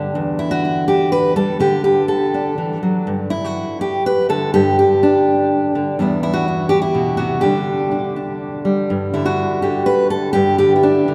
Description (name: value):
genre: folk, solo fingerstyle acoustic guitar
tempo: 124 BPM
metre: 3/4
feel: straight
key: G major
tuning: A4 = 440 Hz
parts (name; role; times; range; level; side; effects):
- fingerpicked steel-string acoustic guitar; solo; 0.0-11.1 s; E2 to B4; -17 LUFS; equal; none
room: wet cathedral reverb, RT60 5.3 s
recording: recorded in a church or concert hall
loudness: -17 LUFS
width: mono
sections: 0.0-8.9 A section; 8.9-11.1 A section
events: none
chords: 0.1 Em7; 1.6 D5; 3.1 G5; 6.0 Em7; 7.4 Dsus4; 8.9 G5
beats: | 0.15 0.63 1.11 | 1.60 2.09 2.58 | 3.07 3.56 4.05 | 4.54 5.02 5.50 | 5.98 6.46 6.94 | 7.42 7.91 8.40 | 8.89 9.38 9.87 | 10.35 10.83